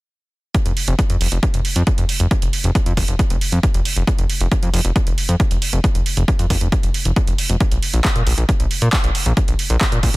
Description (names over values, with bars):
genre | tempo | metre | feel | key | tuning
uplifting trance | 136 BPM | 4/4 | straight | unclear | A4 = 440 Hz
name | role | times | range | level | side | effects
electronic kick drum | drums | 0.5-10.1 s | none | -18 LUFS | equal | overdrive
punchy analog drum machine | drums | 0.5-10.2 s | handclaps, hi-hat | -24 LUFS | right 3 dB | overdrive
fat analog bass | bass | 0.7-10.2 s | F1 to Bb2 | -18 LUFS | equal | sidechain pumping
room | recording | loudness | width
little or no reverb | dense, heavily limited modern master | -15 LUFS | side -21 dB against mid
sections
0.5-10.2 A section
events
none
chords
none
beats
| 0.55 0.99 1.43 1.87 | 2.31 2.75 3.19 3.63 | 4.08 4.52 4.96 5.40 | 5.84 6.28 6.72 7.16 | 7.60 8.04 8.49 8.93 | 9.37 9.81